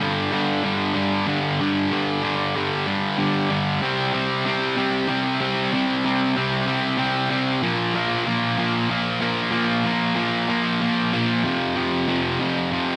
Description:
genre	rock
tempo	63 BPM (dotted quarters)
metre	6/8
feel	straight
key	unclear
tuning	A4 = 440 Hz
part	thick fuzz guitar	solo	0.0-13.0 s	F2 to C4	-22 LUFS	equal	distortion, slapback echo
room	moderate studio reverb, RT60 0.6 s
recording	none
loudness	-22 LUFS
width	mono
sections	0.0-13.0 A section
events	none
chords	0.0 G5; 3.8 C5; 7.6 Bb5; 11.4 F5

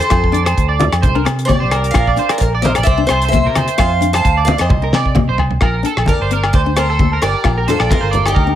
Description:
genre	highlife guitar band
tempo	131 BPM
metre	4/4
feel	swing 54% on 16ths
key	Bb major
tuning	A4 = 438 Hz
part	picked acoustic archtop guitar	melody	0.0-8.6 s	Eb4 to A5	-19 LUFS	equal	none
part	electric guitar at the edge of break-up	arpeggios	0.0-8.6 s	A4 to D5	-20 LUFS	right 5 dB	analog chorus, slapback echo, plate reverb
part	damped 70s drum kit	drums	0.0-8.5 s	hi-hat, kick drum, rim click, snare drum, toms	-18 LUFS	equal	none
part	nylon-string guitar	accompaniment	0.1-8.6 s	Bb3 to F4	-23 LUFS	left 9 dB	plate reverb
part	fingered electric bass	bass	0.1-8.6 s	G1 to C3	-18 LUFS	equal	none
part	agogo bells	percussion	0.1-8.4 s	none	-24 LUFS	left 4 dB	none
part	congas	percussion	0.1-8.4 s	none	-21 LUFS	left 2 dB	none
room	light reverb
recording	none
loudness	-12 LUFS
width	side -11 dB against mid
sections	0.0-5.6 A section; 5.6-8.6 B section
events	drum fill 4.7-5.6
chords	0.1 F; 1.0 Csus2; 2.0 Bb; 2.9 C; 3.8 F5; 4.7 Cmadd9; 5.6 Bb

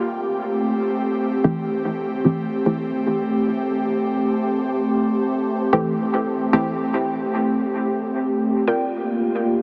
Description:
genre	dub techno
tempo	free time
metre	none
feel	none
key	unclear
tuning	A4 = 440 Hz
part	airy breathy pad	sustained chords	0.0-9.6 s	A3 to G4	-23 LUFS	equal	chorus
part	filtered dub chord stab	stabs	1.4-6.7 s	E3 to G4	-26 LUFS	equal	chorus, phaser, dub echo
part	warbly dusty pluck	riff	8.7-8.8 s	F4 to G5	-26 LUFS	equal	chorus, dub echo
room	moderate huge ambient reverb, RT60 6.4 s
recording	heavily compressed radio sound, multiband compression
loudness	-22 LUFS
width	mono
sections	0.0-9.6 A section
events	filter sweep on synth stab 0.0-9.6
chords	0.1 Am7; 8.7 Gm7

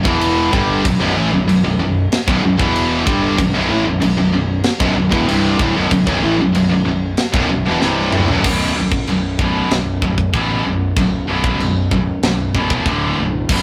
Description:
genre	heavy metal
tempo	95 BPM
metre	4/4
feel	straight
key	B minor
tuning	A4 = 440 Hz
part	scooped high-gain guitar	riff	0.0-13.6 s	B1 to G3	-25 LUFS	equal	none
part	scooped high-gain guitar	riff	0.0-13.6 s	B1 to G3	-21 LUFS	equal	distortion
part	tight distorted guitar	riff	0.0-8.4 s	B1 to G3	-21 LUFS	equal	distortion
part	fuzz fingered electric bass	bass	0.0-13.6 s	B0 to A1	-26 LUFS	equal	overdrive
part	tight metal drum kit	drums	0.1-13.6 s	china cymbal, crash cymbal, kick drum, snare drum, toms	-23 LUFS	equal	none
room	moderate stone room reverb, RT60 1.0 s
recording	rough rehearsal-room recording, warm saturation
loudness	-16 LUFS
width	mono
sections	0.0-8.4 A section; 8.4-13.6 B section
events	drum fill 7.8-8.4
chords	0.0 Bm; 8.4 B5; 12.9 D5

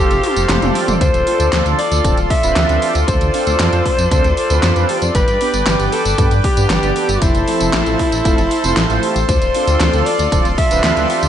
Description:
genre	synthwave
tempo	116 BPM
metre	4/4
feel	straight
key	D dorian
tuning	A4 = 440 Hz
part	raspy alto saxophone	melody	0.0-11.3 s	E4 to E5	-19 LUFS	left 1 dB	ping-pong delay
part	soft supersaw	sustained chords	0.0-11.3 s	F4 to D6	-20 LUFS	right 1 dB	sidechain pumping
part	mellow synth brass	stabs	0.0-11.2 s	F3 to D5	-22 LUFS	right 3 dB	chorus, tape echo
part	dark detuned saw bass	bass	0.0-11.3 s	D1 to G2	-18 LUFS	equal	none
part	pop drum kit	drums	0.1-11.3 s	handclaps, hi-hat, snare drum, tambourine, toms	-21 LUFS	equal	studio reverb, gated reverb
part	electronic kick drum	drums	1.0-10.7 s	none	-17 LUFS	equal	studio reverb
room	light reverb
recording	nothing above 10.6 kHz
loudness	-12 LUFS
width	side -10 dB against mid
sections	0.0-11.3 A section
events	drum fill 0.2-1.0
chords	0.0 F; 1.0 Dm7; 5.1 G; 7.2 F; 9.3 Dm7

